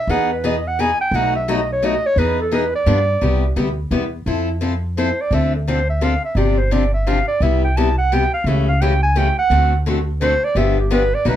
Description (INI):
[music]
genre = acoustic string swing (jazz manouche)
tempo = 172 BPM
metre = 3/4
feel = swing 62% on 8ths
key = E major, C major from 3.2 s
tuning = A4 = 439 Hz
[part]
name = warm clarinet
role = melody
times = 0.0-11.4 s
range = G4 to A5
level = -20 LUFS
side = right 2 dB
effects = plate reverb
[part]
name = picked steel-string acoustic guitar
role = accompaniment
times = 0.1-11.4 s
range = B2 to A4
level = -21 LUFS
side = left 4 dB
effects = none
[part]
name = upright bass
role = bass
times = 0.1-11.4 s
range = G1 to G2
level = -19 LUFS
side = equal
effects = none
[sound]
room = light reverb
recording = none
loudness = -15 LUFS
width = side -11 dB against mid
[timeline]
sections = 0.0-3.2 A section; 3.2-11.4 A section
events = clarinet solo 0.0-11.4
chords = 0.1 Emaj7; 1.1 B7; 2.2 Emaj7; 2.9 G7; 3.2 Cmaj7; 4.3 Fmaj7; 5.3 Dm7; 6.4 G7sus4; 7.4 Cmaj7; 8.5 A7/C#; 9.5 D7; 10.6 G7